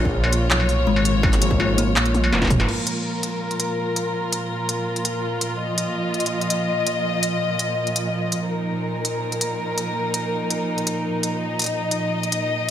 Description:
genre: half-time drum and bass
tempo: 165 BPM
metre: 4/4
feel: half-time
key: Bb minor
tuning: A4 = 440 Hz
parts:
  - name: warm chamber string section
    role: sustained chords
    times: 0.0-12.7 s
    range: Bb2 to Eb5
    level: -23 LUFS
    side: equal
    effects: sidechain pumping
  - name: dark detuned saw bass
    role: bass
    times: 0.0-2.7 s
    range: F1 to Cb2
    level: -21 LUFS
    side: equal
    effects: none
  - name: electronic kick drum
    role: drums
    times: 0.1-2.6 s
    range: none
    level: -23 LUFS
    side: equal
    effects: distortion, studio reverb
  - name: industrial drum kit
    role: drums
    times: 0.2-12.4 s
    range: crash cymbal, handclaps, hi-hat, snare drum, struck metal, toms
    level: -23 LUFS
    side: equal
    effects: studio reverb
  - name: kalimba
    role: arpeggios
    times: 0.9-2.7 s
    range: Ab3 to F4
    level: -27 LUFS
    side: left 3 dB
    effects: ping-pong delay
room: light reverb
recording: none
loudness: -20 LUFS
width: side -10 dB against mid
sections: 0.0-2.7 A section; 2.7-12.7 B section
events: drop 0.0-2.7; drum fill 2.1-2.7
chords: 0.0 Bb5

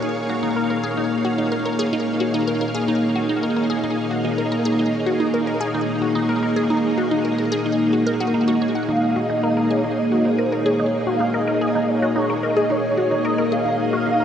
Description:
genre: ambient, sequencer-driven space music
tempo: 110 BPM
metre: 4/4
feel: straight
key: Eb minor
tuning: A4 = 440 Hz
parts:
  - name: string machine, full ensemble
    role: sustained chords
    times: 0.0-14.2 s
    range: Bb3 to F5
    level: -20 LUFS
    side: equal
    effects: ensemble chorus
  - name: resonant blip pluck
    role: riff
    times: 0.0-14.2 s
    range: Eb4 to Gb5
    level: -24 LUFS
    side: equal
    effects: phaser, shimmer reverb, tape echo
  - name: mellow horn-like synth lead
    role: melody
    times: 8.9-14.2 s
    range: C5 to F5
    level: -23 LUFS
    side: right 1 dB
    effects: ensemble chorus, shimmer reverb, tape echo
room: wet cathedral reverb, RT60 5.6 s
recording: in a vast, echoing space, cassette tape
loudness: -18 LUFS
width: side -9 dB against mid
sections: 0.0-14.2 A section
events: none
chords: 0.0 Ebm7

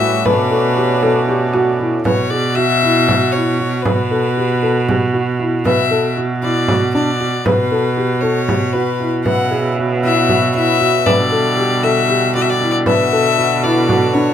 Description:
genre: contemporary instrumental, chamber music in an uneven meter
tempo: 233 BPM (eighths)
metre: 7/8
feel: straight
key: B minor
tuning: A4 = 442 Hz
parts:
  - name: clear violin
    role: melody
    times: 0.0-14.3 s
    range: B4 to F#5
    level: -18 LUFS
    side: left 8 dB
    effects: none
  - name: pedal harmonium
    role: sustained chords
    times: 0.0-2.0, 9.3-14.3 s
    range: C#3 to A4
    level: -21 LUFS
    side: right 1 dB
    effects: none
  - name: felt-muted upright piano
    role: arpeggios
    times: 0.0-14.3 s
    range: D4 to B4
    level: -19 LUFS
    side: left 1 dB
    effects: none
  - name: clear cello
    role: bass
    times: 0.0-14.3 s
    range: A2 to B2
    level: -18 LUFS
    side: right 3 dB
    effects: none
  - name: frame drum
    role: percussion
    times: 0.3-14.1 s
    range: none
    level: -21 LUFS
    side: right 2 dB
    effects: none
room: moderate studio reverb, RT60 0.6 s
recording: none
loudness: -13 LUFS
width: side -9 dB against mid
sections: 0.0-2.1 A section; 2.1-14.3 B section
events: none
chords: 0.3 Bm9; 2.1 C#m7/B; 3.9 Em/B (rootless); 5.7 Bm; 7.5 G/B; 9.3 C#m7/B; 11.1 Em7/B; 12.9 Bm7

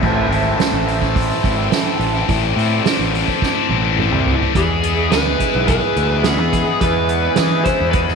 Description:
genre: psychedelic rock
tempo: 106 BPM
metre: 4/4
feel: straight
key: unclear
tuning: A4 = 440 Hz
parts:
  - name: pedal harmonium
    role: sustained chords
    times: 0.0-8.2 s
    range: G#3 to B5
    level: -24 LUFS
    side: right 8 dB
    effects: none
  - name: cranked stack guitar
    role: riff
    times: 0.0-8.2 s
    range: A2 to G#4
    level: -20 LUFS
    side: left 14 dB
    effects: overdrive, phaser
  - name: fuzz fingered electric bass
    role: bass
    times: 0.0-8.1 s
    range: G#1 to E3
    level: -20 LUFS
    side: equal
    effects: overdrive
  - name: soft-mallet drum kit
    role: drums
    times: 0.0-8.2 s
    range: crash cymbal, hi-hat, kick drum, snare drum, toms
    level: -20 LUFS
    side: right 4 dB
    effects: none
  - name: fuzz lead guitar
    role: melody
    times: 4.6-8.0 s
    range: G#4 to C5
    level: -21 LUFS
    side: equal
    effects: distortion, tape echo
room: moderate echo chamber reverb, RT60 1.9 s, studio ambience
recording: 1960s-style stereo with parts hard left and right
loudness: -14 LUFS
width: side -5 dB against mid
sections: 0.0-4.5 A section; 4.5-8.2 B section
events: drum fill 3.4-4.5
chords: 0.0 Am; 4.5 E

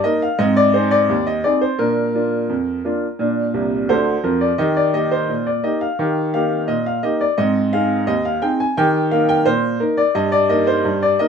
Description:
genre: ragtime piano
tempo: 86 BPM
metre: 2/4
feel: straight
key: Eb major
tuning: A4 = 441 Hz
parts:
  - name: clear baby grand piano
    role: solo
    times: 0.0-11.3 s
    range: C2 to Ab5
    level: -16 LUFS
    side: equal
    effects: none
room: moderate studio reverb, RT60 0.7 s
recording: minimal, uncompressed stereo recording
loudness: -16 LUFS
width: side -6 dB against mid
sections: 0.0-11.3 A section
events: grand piano fill 3.5-4.6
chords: 0.4 Ab; 1.8 Bb; 4.6 Eb; 7.4 Ab; 8.8 Eb; 10.2 Eb/G

